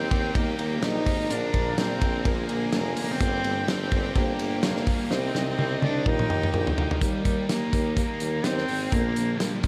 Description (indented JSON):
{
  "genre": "piano-driven pop",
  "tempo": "126 BPM",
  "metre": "4/4",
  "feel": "swing 56% on 16ths",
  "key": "Eb major",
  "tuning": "A4 = 440 Hz",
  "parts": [
    { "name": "warm cello", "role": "melody", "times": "0.0-9.7 s", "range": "G3 to Eb4", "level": "-32 LUFS", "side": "equal", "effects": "diffuse ambient delay" },
    { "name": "warm studio violin section", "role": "second line", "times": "0.0-7.0 s", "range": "Eb4 to Bb5", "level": "-39 LUFS", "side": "equal", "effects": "none" },
    { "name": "dark baby grand piano", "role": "accompaniment", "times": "0.0-9.7 s", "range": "G2 to C5", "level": "-35 LUFS", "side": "equal", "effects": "analog chorus" },
    { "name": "cranked stack guitar", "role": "riff", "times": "0.0-9.7 s", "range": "G2 to Bb4", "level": "-38 LUFS", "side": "equal", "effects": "overdrive" },
    { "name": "warm tuba", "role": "bass", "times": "0.0-9.7 s", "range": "F1 to Eb2", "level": "-33 LUFS", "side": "equal", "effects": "none" },
    { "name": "loose indie drum kit", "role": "drums", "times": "0.1-9.7 s", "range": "hi-hat, kick drum, ride cymbal, snare drum, toms", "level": "-30 LUFS", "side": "equal", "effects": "none" }
  ],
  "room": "moderate lush hall reverb, RT60 2.0 s, small room ambience",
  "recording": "dreamy mix soaked in reverb",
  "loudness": "-26 LUFS",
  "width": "mono",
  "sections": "0.0-7.0 A section; 7.0-9.7 B section",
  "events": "drum fill 5.1-7.0",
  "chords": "0.0 Eb; 1.3 Bb; 3.2 Gm; 5.1 Cm; 6.1 Ebadd9; 7.0 Eb; 8.9 Bb"
}